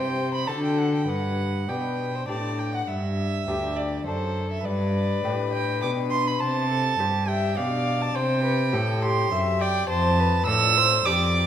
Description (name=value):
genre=classical, baroque-style sonata movement with continuo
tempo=102 BPM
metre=3/4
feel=straight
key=G major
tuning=A4 = 440 Hz
part: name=warm violin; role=melody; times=0.0-11.5 s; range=G4 to F#5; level=-29 LUFS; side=left 6 dB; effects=none
part: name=warm violin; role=second line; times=0.0-11.5 s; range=C5 to E6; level=-26 LUFS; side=right 6 dB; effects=none
part: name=lute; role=accompaniment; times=0.0-11.5 s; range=D2 to E5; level=-31 LUFS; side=left 2 dB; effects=none
part: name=rich cello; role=bass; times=0.0-11.5 s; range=D2 to D3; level=-26 LUFS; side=right 1 dB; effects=none
room=wet recital hall reverb, RT60 1.6 s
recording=none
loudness=-22 LUFS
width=side -9 dB against mid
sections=0.0-2.9 A section; 2.9-11.5 B section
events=none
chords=0.5 D; 1.1 G; 4.1 D7/F#; 4.7 G; 6.4 C; 7.6 G7/B; 8.2 C; 9.9 Dm7/F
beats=0.47 | 1.08 1.68 2.28 | 2.88 3.48 4.06 | 4.65 5.24 5.83 | 6.41 6.99 7.57 | 8.15 8.73 9.31 | 9.89 10.47 11.05